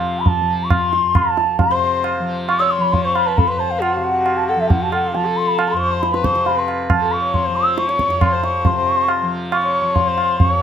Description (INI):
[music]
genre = indian classical, Hindustani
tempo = 136 BPM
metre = 4/4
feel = straight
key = F raga puriya dhanashri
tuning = A4 = 443 Hz
[part]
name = mellow bansuri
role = melody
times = 0.0-10.6 s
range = E5 to E6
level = -18 LUFS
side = left 1 dB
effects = none
[part]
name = tanpura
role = drone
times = 0.0-10.6 s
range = F2 to F3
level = -25 LUFS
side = left 1 dB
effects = none
[part]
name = tabla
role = percussion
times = 0.3-10.6 s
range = none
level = -20 LUFS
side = right 2 dB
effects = none
[part]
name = dark sarangi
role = second line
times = 1.7-10.6 s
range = E4 to Db5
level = -24 LUFS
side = left 3 dB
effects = none
[sound]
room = light reverb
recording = close, detailed microphones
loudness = -15 LUFS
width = side -8 dB against mid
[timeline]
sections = 0.0-8.6 A section; 8.6-10.6 B section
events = speeding up 0.0-10.6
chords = none